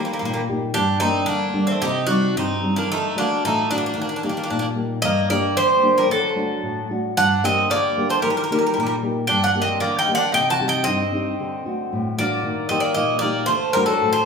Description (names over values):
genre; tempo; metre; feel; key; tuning
greek folk, Greek bouzouki band; 113 BPM; 2/4; straight; D phrygian dominant; A4 = 439 Hz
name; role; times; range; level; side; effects
Greek bouzouki; melody; 0.0-14.2 s; Bb3 to A5; -20 LUFS; equal; none
Greek bouzouki; second line; 0.0-14.2 s; F#3 to F#4; -26 LUFS; right 3 dB; none
nylon-string guitar; accompaniment; 0.0-14.3 s; G2 to G4; -23 LUFS; left 1 dB; none
room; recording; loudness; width
wet large studio reverb, RT60 1.2 s; band playing live in one room; -18 LUFS; side -5 dB against mid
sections
0.0-5.0 A section; 5.0-13.5 A section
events
speeding up 0.0-14.3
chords
0.0 Eb; 0.8 Gm; 1.8 Cm; 2.9 D; 4.0 Eb; 5.0 Gm; 6.1 D; 7.2 Gm; 8.2 Eb; 9.3 Gm; 10.3 Cm; 11.4 D; 12.4 Eb; 13.5 D